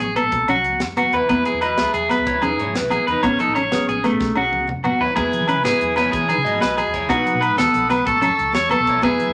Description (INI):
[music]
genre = highlife guitar band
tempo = 124 BPM (dotted quarters)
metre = 12/8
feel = straight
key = E major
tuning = A4 = 439 Hz
[part]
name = mellow electric guitar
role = accompaniment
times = 0.0-9.3 s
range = B3 to C#4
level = -26 LUFS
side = equal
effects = phaser
[part]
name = electric guitar at the edge of break-up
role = arpeggios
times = 0.0-9.3 s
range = A3 to C#5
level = -21 LUFS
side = equal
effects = none
[part]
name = hollow-body short-scale fingered electric bass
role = bass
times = 0.0-9.3 s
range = E1 to E3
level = -34 LUFS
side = equal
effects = none
[part]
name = tight funk drum kit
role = drums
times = 0.0-9.3 s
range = hi-hat, kick drum, snare drum, toms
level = -32 LUFS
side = equal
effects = none
[part]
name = agogo bells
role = percussion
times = 0.2-9.2 s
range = none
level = -31 LUFS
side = equal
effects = none
[part]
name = congas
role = percussion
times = 0.2-9.3 s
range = none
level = -33 LUFS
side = equal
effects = none
[part]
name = electric guitar at the edge of break-up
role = melody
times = 1.1-9.3 s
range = C#4 to E5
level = -27 LUFS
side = equal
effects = none
[part]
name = overdriven combo organ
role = sustained chords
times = 5.2-9.3 s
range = F#5 to E6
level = -30 LUFS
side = equal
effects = none
[sound]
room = wet small room reverb, RT60 0.6 s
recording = none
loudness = -19 LUFS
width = mono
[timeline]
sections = 0.0-5.2 A section; 5.2-9.3 B section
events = drum fill 4.2-5.2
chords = 0.3 Bsus2; 1.3 E; 3.2 Amaj7; 4.2 Bsus2; 5.2 E; 7.1 B; 8.1 A